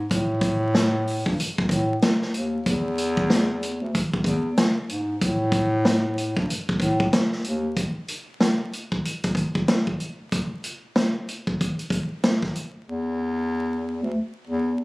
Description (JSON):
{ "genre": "hip hop, boom-bap hip-hop", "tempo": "94 BPM", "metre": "4/4", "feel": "swing 60% on 16ths", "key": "unclear", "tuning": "A4 = 440 Hz", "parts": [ { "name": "mellow bass clarinet", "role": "bass", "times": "0.0-7.7, 12.9-14.7 s", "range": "D2 to A2", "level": "-24 LUFS", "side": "equal", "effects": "none" }, { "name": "vintage drum kit", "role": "drums", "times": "0.1-12.7 s", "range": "hi-hat, kick drum, snare drum", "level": "-22 LUFS", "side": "equal", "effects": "none" } ], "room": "moderate studio reverb, RT60 0.5 s", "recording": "recorded on a phone in the room, club reverb, vinyl crackle", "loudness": "-22 LUFS", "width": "side -22 dB against mid", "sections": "0.0-7.8 A section; 7.8-14.8 B section", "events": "none", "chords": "none" }